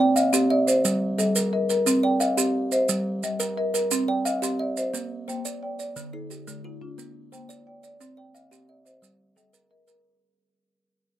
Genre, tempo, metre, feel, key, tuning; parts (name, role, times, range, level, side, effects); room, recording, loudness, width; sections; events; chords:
southern african traditional, mbira-style interlocking cycle; 117 BPM (dotted quarters); 12/8; straight; C equiheptatonic; A4 = 440 Hz
kalimba; arpeggios; 0.0-10.2 s; D3-29c to F5; -26 LUFS; right 2 dB
marimba with medium mallets; arpeggios; 0.0-10.2 s; D3-29c to G5; -25 LUFS; left 1 dB
maracas; percussion; 0.2-10.0 s; -28 LUFS; right 6 dB
light reverb; close, detailed microphones; -21 LUFS; side -12 dB against mid
0.0-10.0 A section
fade-out 0.0-10.0
0.0 Cm; 0.8 Gm; 1.9 Cm; 2.9 Gm; 3.9 Cm; 4.9 Bb; 6.0 Dm; 7.0 Bb; 8.0 Cm; 9.0 Gm